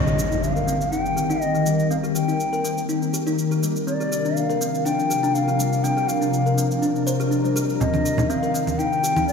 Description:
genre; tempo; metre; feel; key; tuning
afro house; 122 BPM; 4/4; swing 54% on 16ths; C minor; A4 = 440 Hz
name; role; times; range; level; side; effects
hollow bansuri; melody; 0.0-9.3 s; D5 to G5; -25 LUFS; left 2 dB; analog delay
ethereal airy pad; sustained chords; 0.0-9.3 s; C3 to Bb4; -24 LUFS; left 2 dB; ensemble chorus, built-in reverb
kalimba; arpeggios; 0.0-9.3 s; G3 to C5; -26 LUFS; left 1 dB; low-pass filter, analog delay
impact; sound effects; 0.0-1.9 s; none; -27 LUFS; left 1 dB; none
shaker; drums; 0.1-9.3 s; none; -33 LUFS; right 1 dB; small room ambience
congas; percussion; 7.8-9.3 s; none; -25 LUFS; right 2 dB; none
room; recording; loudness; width
wet lush hall reverb, RT60 1.9 s, small room ambience; dreamy mix soaked in reverb; -19 LUFS; side -6 dB against mid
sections
0.0-9.3 A section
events
impact 0.0-1.9; filter sweep on kalimba 0.0-9.3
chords
0.0 Cm7; 3.9 Bb/C; 7.8 Cm7

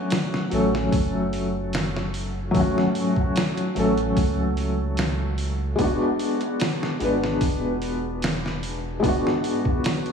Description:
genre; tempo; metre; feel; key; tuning
trip hop; 74 BPM; 4/4; straight; F# minor; A4 = 440 Hz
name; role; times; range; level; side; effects
felt-muted upright piano; accompaniment; 0.0-10.1 s; F#3 to B4; -23 LUFS; left 1 dB; tremolo, vintage 12-bit sampler grit, tape echo
trip hop sampler-style drum kit; drums; 0.1-10.1 s; hi-hat, kick drum, snare drum; -27 LUFS; equal; studio reverb
warm sub bass; bass; 0.5-9.2 s; E1 to C#2; -29 LUFS; right 1 dB; none
room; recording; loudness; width
moderate plate reverb, RT60 3.2 s; dreamy mix soaked in reverb, small room reverb; -21 LUFS; side -6 dB against mid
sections
0.0-10.1 A section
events
none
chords
0.0 F#m; 5.8 E7

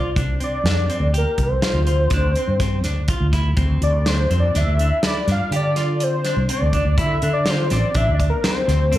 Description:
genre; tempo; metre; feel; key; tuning
progressive instrumental, band music in an uneven meter; 123 BPM; 7/4; straight; D minor; A4 = 440 Hz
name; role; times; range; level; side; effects
wide unison lead; melody; 0.0-9.0 s; Bb4 to F5; -23 LUFS; left 1 dB; slapback echo
clean electric guitar; arpeggios; 0.0-9.0 s; C4 to G4; -28 LUFS; equal; wide subtle chorus, slapback echo
fretless electric bass; bass; 0.0-9.0 s; A1 to D3; -19 LUFS; equal; analog chorus
modern studio drum kit; drums; 0.2-9.0 s; hi-hat, kick drum, snare drum; -24 LUFS; equal; none
room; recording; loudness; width
small room ambience; live gig heard through the venue's PA, club reverb; -17 LUFS; side -14 dB against mid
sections
0.0-3.6 A section; 3.6-9.0 B section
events
analog synth lead solo 3.6-9.0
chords
0.0 G7sus4; 3.6 Dm7

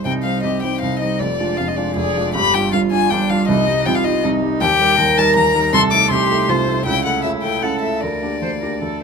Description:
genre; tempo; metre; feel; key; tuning
quick classical-period movement for piano trio; 158 BPM; 3/4; straight; C minor; A4 = 440 Hz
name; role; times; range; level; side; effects
warm violin; melody; 0.0-9.0 s; C5 to D6; -18 LUFS; left 7 dB; none
warm grand piano; accompaniment; 0.0-9.0 s; F1 to Bb4; -19 LUFS; right 2 dB; none
warm cello; second line; 0.1-9.0 s; D4 to C5; -22 LUFS; right 4 dB; none
room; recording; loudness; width
light reverb; minimal, uncompressed stereo recording; -15 LUFS; side -5 dB against mid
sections
0.1-9.0 A section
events
none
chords
0.1 Cm; 1.2 Ddim/F; 2.3 G5; 3.5 Cm; 4.6 Eb; 5.7 Adim/C; 6.9 A/C#; 8.0 Gm/D

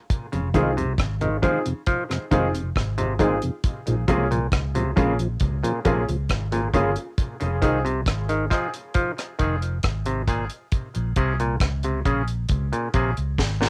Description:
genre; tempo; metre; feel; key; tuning
dub reggae; 68 BPM; 4/4; straight; F minor; A4 = 439 Hz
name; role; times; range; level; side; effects
deep reggae drum kit; drums; 0.1-13.7 s; hi-hat, kick drum, rim click, snare drum; -28 LUFS; equal; none
mellow tonewheel organ; accompaniment; 0.3-13.7 s; F2 to Eb4; -33 LUFS; equal; none
vintage muted fingered electric bass; bass; 0.3-13.7 s; F1 to Db2; -28 LUFS; equal; transformer saturation
mellow electric guitar; accompaniment; 0.5-6.9 s; Eb3 to F4; -31 LUFS; equal; analog chorus, high-pass filter, cassette tape, tape echo
bright clav; arpeggios; 0.5-13.7 s; Bb2 to F3; -30 LUFS; equal; cassette tape, tape echo
warm upright piano; stabs; 0.5-13.1 s; Bb3 to Ab4; -30 LUFS; equal; high-pass filter, cassette tape, tape echo
room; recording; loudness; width
light reverb; home recording on cassette; -24 LUFS; mono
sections
0.0-13.7 A section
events
filter sweep 3.6-13.7; drum fill 13.4-13.7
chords
0.1 Fm7; 3.6 Bbm7; 7.2 Fm7; 10.7 Bbm7

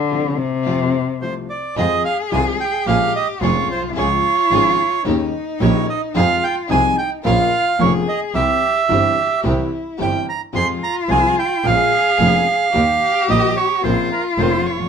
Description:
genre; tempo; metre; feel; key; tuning
tango; 110 BPM; 4/4; rubato; F minor; A4 = 440 Hz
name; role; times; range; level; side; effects
dark cello; second line; 0.0-14.9 s; C3 to Ab4; -22 LUFS; left 4 dB; none
warm concert grand piano; accompaniment; 0.1-14.9 s; F1 to G4; -23 LUFS; left 4 dB; none
dark studio string section; stabs; 0.1-14.6 s; Ab3 to Bb4; -28 LUFS; equal; none
bandoneon; melody; 1.2-14.9 s; Bb4 to C6; -18 LUFS; right 4 dB; none
clear double bass; bass; 1.8-14.9 s; F1 to F2; -21 LUFS; right 2 dB; none
room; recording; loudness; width
light reverb; minimal, uncompressed stereo recording; -15 LUFS; side -7 dB against mid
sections
0.0-1.8 A section; 1.8-14.9 B section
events
break 0.0-1.8; cello solo 0.0-1.8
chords
0.0 F; 1.8 Fm7; 2.9 Bbm7; 4.0 Db; 5.1 Eb7; 6.2 Fm7; 7.2 Bbm; 8.3 C; 10.5 Fm; 11.6 Bbm7; 12.7 Eb; 13.8 Bbmadd9

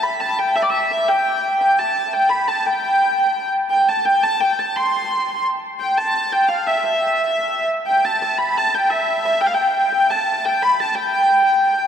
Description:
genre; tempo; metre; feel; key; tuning
medieval; 115 BPM (dotted quarters); 6/8; straight; unclear; A4 = 440 Hz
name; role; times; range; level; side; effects
rich hurdy-gurdy; solo; 0.0-11.8 s; D5 to C6; -16 LUFS; equal; none
room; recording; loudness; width
wet cathedral reverb, RT60 5.5 s; in a vast, echoing space; -16 LUFS; side -8 dB against mid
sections
0.0-5.8 A section; 5.8-11.9 A section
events
none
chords
none

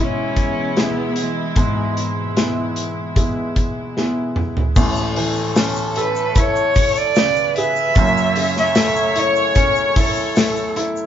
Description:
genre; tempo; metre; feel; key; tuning
pop ballad; 75 BPM; 4/4; straight; A major; A4 = 440 Hz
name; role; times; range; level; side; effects
warm cello; melody; 0.0-10.8 s; G#3 to E5; -19 LUFS; equal; none
felt-muted upright piano; accompaniment; 0.0-11.1 s; F#1 to A4; -22 LUFS; right 1 dB; none
warm studio string section; sustained chords; 0.0-4.7 s; B2 to E4; -26 LUFS; equal; none
loose indie drum kit; drums; 0.4-10.9 s; crash cymbal, hi-hat, kick drum, snare drum, toms; -18 LUFS; left 1 dB; none
warm studio violin section; second line; 4.8-11.1 s; A4 to C#5; -25 LUFS; left 1 dB; none
egg shaker; percussion; 4.8-11.1 s; none; -38 LUFS; left 6 dB; none
room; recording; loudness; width
moderate small room reverb, RT60 0.5 s; band playing live in one room, nothing above 7.6 kHz; -16 LUFS; side -10 dB against mid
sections
0.0-4.8 A section; 4.8-11.1 B section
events
drum fill 4.0-4.8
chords
0.0 E/G#; 4.8 Amaj7; 8.0 F#m7

